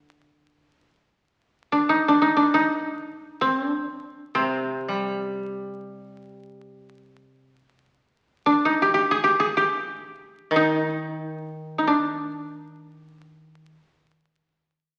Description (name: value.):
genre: japanese traditional, Japanese chamber music.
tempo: free time.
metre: none.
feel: none.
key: unclear.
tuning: A4 = 443 Hz.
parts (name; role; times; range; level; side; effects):
koto; melody; 0.0-14.8 s; C4 to Ab4; -23 LUFS; equal; none.
koto; accompaniment; 0.0-13.7 s; C3 to G3; -31 LUFS; equal; none.
room: wet recital hall reverb, RT60 1.5 s.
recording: very old 78 rpm record, vinyl crackle.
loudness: -23 LUFS.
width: mono.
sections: 0.0-15.0 A section.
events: none.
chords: none.